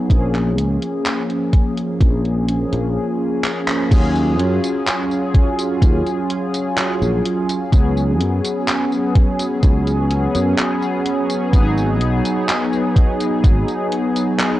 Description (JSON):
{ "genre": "vaporwave", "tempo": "63 BPM", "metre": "4/4", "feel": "straight", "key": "unclear", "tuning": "A4 = 440 Hz", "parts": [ { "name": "mellow synth brass", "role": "accompaniment", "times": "0.0-14.6 s", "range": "E#3 to G#4", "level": "-19 LUFS", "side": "equal", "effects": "analog chorus, cassette tape, tape echo" }, { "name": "sustaining fretless electric bass", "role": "bass", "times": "0.1-13.6 s", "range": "G#1 to F#2", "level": "-19 LUFS", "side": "equal", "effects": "none" }, { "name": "electronic kick drum", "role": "drums", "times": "0.1-13.6 s", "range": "none", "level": "-13 LUFS", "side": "equal", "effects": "none" }, { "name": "gated 80s digital drum machine", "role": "drums", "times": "0.1-14.6 s", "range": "crash cymbal, handclaps, hi-hat, tambourine", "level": "-24 LUFS", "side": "equal", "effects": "gated reverb" } ], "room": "little or no reverb", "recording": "dry, gritty hardware recording, cassette tape", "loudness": "-15 LUFS", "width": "side -15 dB against mid", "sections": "0.0-3.9 A section; 3.9-14.6 B section", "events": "stop 3.0-3.9; drum fill 3.4-3.9; band accent 3.7-4.2", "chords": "0.1 A#m7; 3.9 D#m11; 7.7 C#7sus4; 11.5 G#m7" }